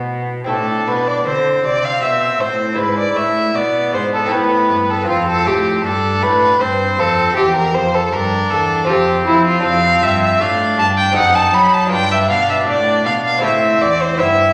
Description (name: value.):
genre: classical, baroque-style sonata movement with continuo.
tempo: 79 BPM.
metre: 3/4.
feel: straight.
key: A minor.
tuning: A4 = 438 Hz.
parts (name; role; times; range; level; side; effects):
lute; accompaniment; 0.0-14.5 s; E2 to B4; -25 LUFS; equal; none.
warm cello; bass; 0.0-14.5 s; E2 to F#3; -24 LUFS; equal; none.
clear oboe; melody; 0.5-14.5 s; B3 to E4; -23 LUFS; equal; none.
clear violin; second line; 0.5-14.5 s; E4 to B5; -17 LUFS; equal; none.
room: wet recital hall reverb, RT60 1.6 s.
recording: none.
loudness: -15 LUFS.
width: mono.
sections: 0.5-14.5 A section.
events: none.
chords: 0.5 Am; 2.8 E7/G#; 4.3 Am; 5.1 F; 7.4 C/E; 8.9 F; 9.7 Dm/F; 11.2 F#dim7; 11.9 G7; 13.4 Am.